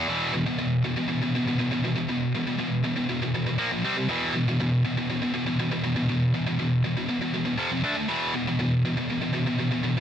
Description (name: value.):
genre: metal.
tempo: 120 BPM.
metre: 4/4.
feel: straight.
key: unclear.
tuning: A4 = 436 Hz.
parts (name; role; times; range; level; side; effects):
heavy high-gain guitar; solo; 0.0-10.0 s; E2 to D4; -23 LUFS; equal; distortion.
room: light reverb.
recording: none.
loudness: -23 LUFS.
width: side -9 dB against mid.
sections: 0.1-10.0 A section.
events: none.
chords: 0.1 E5; 3.6 A#5; 3.8 C5; 4.1 E5; 7.6 F5; 7.8 D5; 8.1 E5.